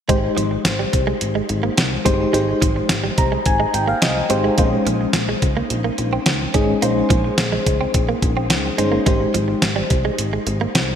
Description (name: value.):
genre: 1980s-style pop.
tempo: 107 BPM.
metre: 4/4.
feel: straight.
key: Ab major.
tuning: A4 = 440 Hz.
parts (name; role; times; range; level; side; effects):
FM electric piano with tremolo; accompaniment; 0.1-11.0 s; Ab3 to Bb5; -20 LUFS; left 2 dB; phaser, shimmer reverb.
direct-recorded clean electric guitar; riff; 0.1-10.7 s; F3 to Db4; -25 LUFS; right 6 dB; analog chorus, ping-pong delay, shimmer reverb.
solid FM bass; bass; 0.1-11.0 s; G1 to Db2; -24 LUFS; equal; none.
clean 12-bit digital drum machine; drums; 0.1-10.9 s; hi-hat, kick drum, snare drum; -19 LUFS; equal; gated reverb.
room: wet lush hall reverb, RT60 1.9 s, digital ambience.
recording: bright 1980s-style digital production.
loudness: -16 LUFS.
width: side -8 dB against mid.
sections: 0.1-11.0 A section.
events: FM electric piano fill 2.9-4.6.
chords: 0.1 Abmaj7; 4.6 Bbm11; 9.1 Abmaj7.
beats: | 0.10 0.66 1.22 1.78 | 2.34 2.90 3.46 4.02 | 4.58 5.14 5.70 6.26 | 6.83 7.39 7.95 8.51 | 9.07 9.63 10.19 10.75.